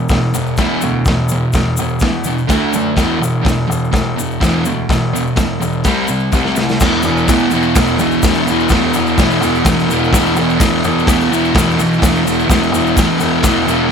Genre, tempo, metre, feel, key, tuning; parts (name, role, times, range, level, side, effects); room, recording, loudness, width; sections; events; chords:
garage rock duo or trio; 126 BPM; 4/4; straight; E minor; A4 = 440 Hz
fuzz guitar; riff; 0.0-13.9 s; E2 to D4; -14 LUFS; right 1 dB; distortion
clear baby grand piano; bass; 0.0-13.9 s; E1 to F#2; -21 LUFS; left 2 dB
crunchy breakbeat drum kit; drums; 0.1-13.6 s; crash cymbal, hi-hat, kick drum, snare drum; -17 LUFS; equal
egg shaker; percussion; 0.1-13.8 s; -28 LUFS; left 7 dB
light reverb; -12 LUFS; side -6 dB against mid
0.0-6.8 A section; 6.8-13.9 B section
drum fill 6.3-6.8
0.0 E5; 2.5 D5; 3.0 E5; 5.9 C5; 6.8 E5